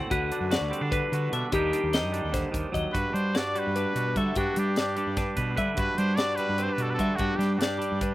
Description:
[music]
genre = math rock and midwest emo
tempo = 296 BPM (eighths)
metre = 7/8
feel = straight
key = G major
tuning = A4 = 440 Hz
[part]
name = twangy electric guitar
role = accompaniment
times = 0.0-8.1 s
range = G2 to B4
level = -30 LUFS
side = right 4 dB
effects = slapback echo
[part]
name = twelve-string electric guitar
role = arpeggios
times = 0.0-8.1 s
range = F#4 to F#5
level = -31 LUFS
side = left 5 dB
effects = phaser, slapback echo
[part]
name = fuzz fingered electric bass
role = bass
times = 0.1-8.1 s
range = D2 to G3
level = -30 LUFS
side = equal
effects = overdrive
[part]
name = crisp fusion drum kit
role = drums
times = 0.1-8.1 s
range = hi-hat, kick drum, snare drum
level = -32 LUFS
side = equal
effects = none
[part]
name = bright trumpet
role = melody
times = 2.9-8.1 s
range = F#4 to D5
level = -31 LUFS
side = equal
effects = none
[sound]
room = little or no reverb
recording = recorded outdoors, with no room sound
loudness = -24 LUFS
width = side -16 dB against mid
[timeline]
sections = 0.0-2.9 A section; 2.9-8.1 B section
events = none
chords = 0.1 Gmaj7/D; 1.5 Cmadd9/Eb; 2.9 Gmaj7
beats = | 0.12 0.32 0.52 0.72 0.92 1.13 1.33 | 1.53 1.73 1.94 2.14 2.34 2.54 2.75 | 2.95 3.15 3.35 3.56 3.76 3.96 4.16 | 4.37 4.57 4.77 4.97 5.18 5.38 5.58 | 5.79 5.99 6.19 6.39 6.60 6.80 7.00 | 7.20 7.41 7.61 7.81 8.01

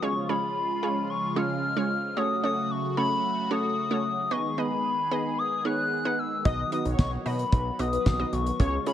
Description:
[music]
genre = synth-pop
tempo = 112 BPM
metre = 4/4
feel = straight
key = unclear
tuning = A4 = 439 Hz
[part]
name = hollow clarinet-like synth lead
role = melody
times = 0.0-8.9 s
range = B5 to F#6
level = -29 LUFS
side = left 3 dB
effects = chorus
[part]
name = wide unison pluck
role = accompaniment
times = 0.0-8.9 s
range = G#3 to F#5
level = -30 LUFS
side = right 2 dB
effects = none
[part]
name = phased analog pad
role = sustained chords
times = 0.0-8.9 s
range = C#3 to G#4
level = -33 LUFS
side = right 1 dB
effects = phaser, chorus
[part]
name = mellow synth brass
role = second line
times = 6.5-8.8 s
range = B4 to D#5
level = -35 LUFS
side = left 4 dB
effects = chorus, phaser, digital delay
[part]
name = fat analog bass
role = bass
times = 6.5-8.8 s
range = B1 to B2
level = -30 LUFS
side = equal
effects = none
[part]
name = damped 70s drum kit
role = drums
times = 6.5-8.9 s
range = hi-hat, kick drum, snare drum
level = -25 LUFS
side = equal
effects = gated reverb
[sound]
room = light reverb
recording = none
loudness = -24 LUFS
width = side -11 dB against mid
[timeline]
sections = 0.0-8.9 A section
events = none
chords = 0.0 C#; 2.2 F#m; 4.3 G#m; 6.5 B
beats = | 0.03 0.56 1.10 1.63 | 2.17 2.70 3.24 3.77 | 4.31 4.85 5.38 5.92 | 6.45 6.99 7.53 8.06 | 8.60

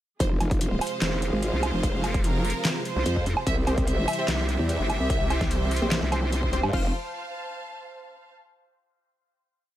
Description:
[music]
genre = heavy wobble dubstep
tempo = 147 BPM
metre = 4/4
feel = half-time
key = F harmonic minor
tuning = A4 = 438 Hz
[part]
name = rich studio violin section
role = melody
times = 0.2-6.9 s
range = Bb4 to E5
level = -33 LUFS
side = right 1 dB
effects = dub echo
[part]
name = supersaw chords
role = sustained chords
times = 0.2-6.9 s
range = C3 to F4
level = -35 LUFS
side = right 1 dB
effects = sidechain pumping
[part]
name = growl bass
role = bass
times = 0.2-6.9 s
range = F1 to G2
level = -26 LUFS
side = equal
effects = chorus, overdrive
[part]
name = dubstep drum kit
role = drums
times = 0.2-6.8 s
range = crash cymbal, handclaps, hi-hat, snare drum, woodblock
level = -30 LUFS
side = right 1 dB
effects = overdrive
[part]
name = electronic kick drum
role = drums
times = 0.2-6.8 s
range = none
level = -27 LUFS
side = equal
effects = overdrive
[part]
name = rich symphonic string section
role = texture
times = 0.2-8.3 s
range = G4 to A5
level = -36 LUFS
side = right 2 dB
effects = sidechain pumping
[part]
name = vowel-sweep wobble bass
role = bass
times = 1.0-6.6 s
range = F1 to F2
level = -26 LUFS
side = equal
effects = chorus, overdrive
[part]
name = orchestra-hit-like synth stab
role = stabs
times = 3.7-6.9 s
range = C4 to F5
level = -35 LUFS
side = left 1 dB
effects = built-in reverb, dub echo
[sound]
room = little or no reverb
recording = none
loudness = -23 LUFS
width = side -13 dB against mid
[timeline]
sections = 0.2-6.7 drop; 6.7-8.4 final chord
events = drop 0.2-6.7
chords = 0.2 Fm; 3.5 C; 6.7 F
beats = | 0.20 0.61 1.02 1.43 | 1.83 2.24 2.65 3.06 | 3.47 3.88 4.28 4.69 | 5.10 5.51 5.92 6.32 | 6.73 7.14 7.55 7.96

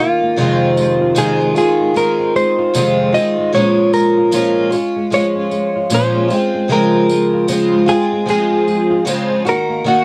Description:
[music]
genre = acoustic pop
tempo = 76 BPM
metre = 4/4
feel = swing 60% on 16ths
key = Bb minor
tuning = A4 = 440 Hz
[part]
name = direct-recorded clean electric guitar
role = melody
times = 0.0-10.0 s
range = F4 to Eb5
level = -19 LUFS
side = equal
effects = cassette tape
[part]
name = picked steel-string acoustic guitar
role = accompaniment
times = 0.0-10.0 s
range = F2 to Gb4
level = -17 LUFS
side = equal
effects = double-tracked, cassette tape
[part]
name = flamenco guitar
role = arpeggios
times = 0.0-10.0 s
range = Eb3 to F4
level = -25 LUFS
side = equal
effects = cassette tape
[part]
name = tambourine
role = percussion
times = 0.4-10.0 s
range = none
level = -32 LUFS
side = equal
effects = none
[sound]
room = moderate booth ambience, RT60 0.2 s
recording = home recording on cassette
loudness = -15 LUFS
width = mono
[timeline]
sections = 0.0-10.0 A section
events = none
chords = 0.4 Fm7; 3.5 Bbm7; 6.3 Dbmaj7; 9.5 Ebm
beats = | 0.38 1.17 1.96 2.75 | 3.54 4.33 5.12 5.91 | 6.70 7.49 8.27 9.06 | 9.85

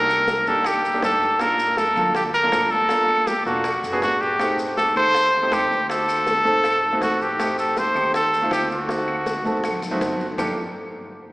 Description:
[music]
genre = Afro-Cuban jazz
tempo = 160 BPM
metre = 4/4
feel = straight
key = G minor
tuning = A4 = 440 Hz
[part]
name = clear trumpet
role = melody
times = 0.0-10.6 s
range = F#4 to C5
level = -20 LUFS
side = equal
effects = none
[part]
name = warm concert grand piano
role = accompaniment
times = 0.0-10.6 s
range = A3 to Bb4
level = -25 LUFS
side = right 1 dB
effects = none
[part]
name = upright bass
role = bass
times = 0.0-10.6 s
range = E1 to G2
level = -39 LUFS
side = equal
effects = none
[part]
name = bongos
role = percussion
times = 0.1-10.5 s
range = none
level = -32 LUFS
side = equal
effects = none
[part]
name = claves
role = percussion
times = 0.1-10.5 s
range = none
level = -37 LUFS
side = left 2 dB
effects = none
[part]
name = congas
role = percussion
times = 0.1-10.5 s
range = none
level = -36 LUFS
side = left 1 dB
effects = none
[part]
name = maracas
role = percussion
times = 0.1-10.5 s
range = none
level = -40 LUFS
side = left 2 dB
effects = none
[sound]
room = wet church reverb, RT60 3.0 s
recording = recorded in a church or concert hall, small speaker sound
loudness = -18 LUFS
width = side -21 dB against mid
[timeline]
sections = 0.0-4.4 A section; 4.4-10.4 B section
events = drum fill 9.5-10.4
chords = 0.0 Cm9; 1.4 Gm9; 3.6 E7; 4.4 Am7b5; 5.9 D7b9; 7.4 Am7b5; 8.9 D7b9; 10.4 Gm9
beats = 0.28 0.66 1.03 | 1.40 1.78 2.15 2.53 | 2.90 3.27 3.65 4.02 | 4.40 4.77 5.15 5.52 | 5.90 6.27 6.64 7.02 | 7.39 7.77 8.14 8.52 | 8.89 9.27 9.64 10.02 | 10.39

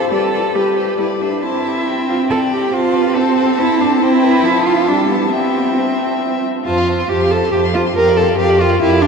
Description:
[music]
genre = quick classical-period movement for string quartet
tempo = 138 BPM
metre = 3/4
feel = straight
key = C major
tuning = A4 = 440 Hz
[part]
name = rich violin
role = melody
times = 0.0-9.1 s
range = B4 to C6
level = -24 LUFS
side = left 7 dB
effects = none
[part]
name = rich violin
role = second line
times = 0.0-9.1 s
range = A4 to F5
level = -23 LUFS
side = left 4 dB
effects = none
[part]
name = rich viola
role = accompaniment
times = 0.0-9.1 s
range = F3 to Bb4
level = -16 LUFS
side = right 1 dB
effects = none
[part]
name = rich cello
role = bass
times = 0.0-9.1 s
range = F2 to A4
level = -17 LUFS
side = right 2 dB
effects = none
[sound]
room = wet cathedral reverb, RT60 5.8 s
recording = dark, warm production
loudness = -13 LUFS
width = side -5 dB against mid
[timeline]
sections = 0.0-6.7 A section; 6.7-9.1 B section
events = none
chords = 0.1 G; 1.4 C; 2.7 F/C; 4.0 C; 4.4 F; 4.9 G; 5.3 C; 6.7 F; 8.0 G5/F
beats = | 0.12 0.56 1.00 | 1.43 1.87 2.31 | 2.74 3.17 3.60 | 4.02 4.45 4.88 | 5.32 5.77 6.22 | 6.66 7.10 7.53 | 7.96 8.39 8.81

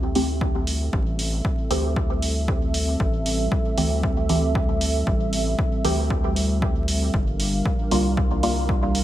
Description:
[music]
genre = dub techno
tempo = 116 BPM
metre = 4/4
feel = swing 55% on 16ths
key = A phrygian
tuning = A4 = 440 Hz
[part]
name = dark analog pad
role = sustained chords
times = 0.0-9.0 s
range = G3 to F5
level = -27 LUFS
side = right 1 dB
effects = chorus, sidechain pumping
[part]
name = filtered dub chord stab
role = stabs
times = 0.0-9.0 s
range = D3 to G4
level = -27 LUFS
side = equal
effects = phaser, sidechain pumping, dub echo
[part]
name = round analog bass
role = bass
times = 0.0-9.0 s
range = G1 to D2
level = -25 LUFS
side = equal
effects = sidechain pumping
[part]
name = electronic hi-hat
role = drums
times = 0.2-9.0 s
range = none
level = -30 LUFS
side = right 1 dB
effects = studio reverb
[part]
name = electronic kick drum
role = drums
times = 0.4-8.8 s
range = none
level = -24 LUFS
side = equal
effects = studio reverb
[sound]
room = light reverb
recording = bright 1980s-style digital production, vinyl crackle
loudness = -20 LUFS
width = side -13 dB against mid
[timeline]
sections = 0.0-9.0 A section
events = none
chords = 0.0 Am7; 7.1 Gm7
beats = 0.41 | 0.93 1.45 1.97 2.48 | 3.00 3.52 4.03 4.55 | 5.07 5.59 6.10 6.62 | 7.14 7.66 8.17 8.69

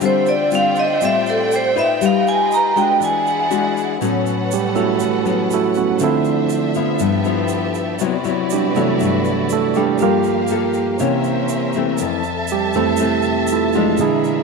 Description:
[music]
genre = bossa nova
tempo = 120 BPM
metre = 4/4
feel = straight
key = unclear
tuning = A4 = 440 Hz
[part]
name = barky tine electric piano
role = accompaniment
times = 0.0, 4.0-14.4 s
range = F2 to Bb4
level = -18 LUFS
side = right 11 dB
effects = none
[part]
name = nylon-string guitar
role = accompaniment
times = 0.0-14.4 s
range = F2 to B4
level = -20 LUFS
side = left 12 dB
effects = none
[part]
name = warm symphonic violin section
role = sustained chords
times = 0.0-14.4 s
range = Bb3 to A5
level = -24 LUFS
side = right 1 dB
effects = none
[part]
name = tube shaker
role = percussion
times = 0.0-14.4 s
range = none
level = -34 LUFS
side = right 15 dB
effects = none
[part]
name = vibraphone with medium hard mallets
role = melody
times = 0.1-3.7 s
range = A4 to Bb5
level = -17 LUFS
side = right 3 dB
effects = none
[sound]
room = moderate plate reverb, RT60 2.8 s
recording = 1960s-style stereo with parts hard left and right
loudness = -15 LUFS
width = side -4 dB against mid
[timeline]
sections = 0.0-4.0 A section; 4.0-14.4 A section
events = vibraphone solo 0.0-4.0; tine electric piano solo 4.0-14.4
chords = 0.0 Dm11; 2.0 G7b13; 3.0 E9; 4.0 A69; 6.0 Dm9; 7.0 G13; 8.0 Cmaj9#11; 10.0 Gm9; 11.0 C7b9; 12.0 Fmaj7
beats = | 0.02 0.52 1.02 1.51 | 2.01 2.51 3.01 3.51 | 4.01 4.51 5.01 5.50 | 6.00 6.50 7.00 7.50 | 8.00 8.50 9.00 9.50 | 10.00 10.50 11.00 11.50 | 11.99 12.49 12.99 13.49 | 13.99

